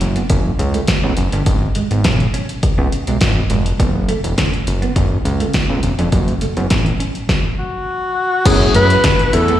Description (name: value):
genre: early-eighties boogie funk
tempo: 103 BPM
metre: 4/4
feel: straight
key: F# minor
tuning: A4 = 440 Hz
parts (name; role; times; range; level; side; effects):
- electric guitar at the edge of break-up; riff; 0.0-9.6 s; Ab3 to C#4; -25 LUFS; right 5 dB; wide subtle chorus, slapback echo
- fat analog bass; bass; 0.0-9.6 s; E1 to F#2; -16 LUFS; equal; none
- deep house drum kit; drums; 0.0-9.6 s; crash cymbal, hi-hat, kick drum, snare drum; -17 LUFS; equal; none
- breathy alto saxophone; melody; 7.6-9.6 s; F#4 to B4; -15 LUFS; left 2 dB; slapback echo, tape echo
- barky tine electric piano; accompaniment; 8.5-9.0 s; F#3 to G#4; -21 LUFS; moving between left 9 dB and left 1 dB; auto-pan, slapback echo
- string machine, violins; sustained chords; 8.5-9.6 s; E3 to F#4; -24 LUFS; equal; ensemble chorus
room: light reverb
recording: live gig heard through the venue's PA, recital hall reverb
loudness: -14 LUFS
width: side -12 dB against mid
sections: 0.0-8.5 A section; 8.5-9.6 B section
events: none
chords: 0.0 F#5; 1.5 Fdim; 3.8 F#7(no3); 6.1 F#m; 8.5 F#m9